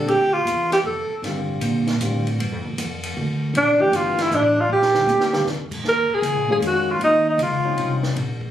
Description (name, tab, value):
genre	modal jazz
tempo	156 BPM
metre	3/4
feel	swing 66% on 8ths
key	G dorian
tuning	A4 = 441 Hz
part	breathy alto saxophone	melody	0.0-1.2, 3.6-8.0 s	D4 to Bb4	-18 LUFS	right 1 dB	none
part	dark concert grand piano	accompaniment	0.0-8.1 s	D3 to G4	-27 LUFS	left 3 dB	none
part	upright bass	bass	0.0-8.5 s	G1 to Bb2	-26 LUFS	equal	none
part	compact cocktail drum kit	drums	0.1-8.5 s	crash cymbal, hi-hat, kick drum, ride cymbal, snare drum, toms	-30 LUFS	equal	none
room	light reverb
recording	recorded on a phone in the room, club reverb, compression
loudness	-18 LUFS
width	side -11 dB against mid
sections	0.0-5.8 A section; 5.8-8.5 B section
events	drum fill 4.7-5.5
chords	0.0 Gm11; 4.7 Bb69; 5.8 Eb13sus4